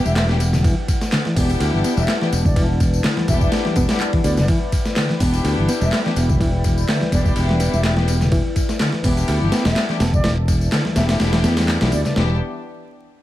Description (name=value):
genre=breakbeat, breaks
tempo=125 BPM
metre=4/4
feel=swing 54% on 16ths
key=E minor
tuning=A4 = 442 Hz
part: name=dark analog pad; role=sustained chords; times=0.0-12.4 s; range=E4 to A5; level=-28 LUFS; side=left 3 dB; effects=chorus, phaser, sidechain pumping
part: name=rich chamber string section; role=stabs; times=0.0-12.3 s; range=B3 to G4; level=-27 LUFS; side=left 4 dB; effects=ping-pong delay
part: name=congas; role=percussion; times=0.0-12.1 s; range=none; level=-28 LUFS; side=left 1 dB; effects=none
part: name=baroque flute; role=melody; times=0.1-12.1 s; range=D5 to E5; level=-29 LUFS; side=equal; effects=telephone sound, vintage 12-bit sampler grit, ping-pong delay
part: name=modern bright fingered electric bass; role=bass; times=0.1-12.4 s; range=E1 to E2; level=-19 LUFS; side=equal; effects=none
part: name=electronic tambourine and handclaps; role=drums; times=0.1-12.1 s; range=none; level=-30 LUFS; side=left 2 dB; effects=none
part: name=dusty soul sampler-style drum kit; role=drums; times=0.2-12.3 s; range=hi-hat, kick drum, ride cymbal, snare drum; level=-21 LUFS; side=equal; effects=overdrive
part: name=reed electric piano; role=riff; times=0.3-12.4 s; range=D3 to B3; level=-25 LUFS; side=equal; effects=fast tremolo, vintage 12-bit sampler grit, ping-pong delay
room=little or no reverb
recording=vinyl crackle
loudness=-16 LUFS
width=side -14 dB against mid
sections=0.0-12.2 A section; 12.2-13.2 B section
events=drop 0.0-12.2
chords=0.0 Em7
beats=0.17 | 0.65 1.12 1.60 2.08 | 2.56 3.04 3.52 4.00 | 4.49 4.96 5.45 5.92 | 6.41 6.88 7.37 7.84 | 8.32 8.80 9.29 9.77 | 10.24 10.72 11.21 11.69 | 12.16